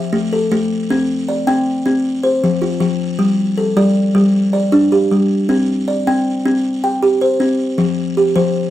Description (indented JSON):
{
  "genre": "southern african traditional",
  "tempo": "105 BPM (dotted quarters)",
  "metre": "12/8",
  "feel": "straight",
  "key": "unclear",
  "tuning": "A4 = 440 Hz",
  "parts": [
    { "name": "buzzing kalimba", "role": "solo", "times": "0.0-8.7 s", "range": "F3 to G5", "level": "-13 LUFS", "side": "equal", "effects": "none" }
  ],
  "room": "moderate studio reverb, RT60 0.5 s",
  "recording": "heard from further back in the room",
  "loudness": "-13 LUFS",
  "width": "side -13 dB against mid",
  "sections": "0.0-8.7 A section",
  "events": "none",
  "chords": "0.0 A5; 0.9 C5; 2.0 F5; 3.2 G5; 5.5 C5; 7.8 F5"
}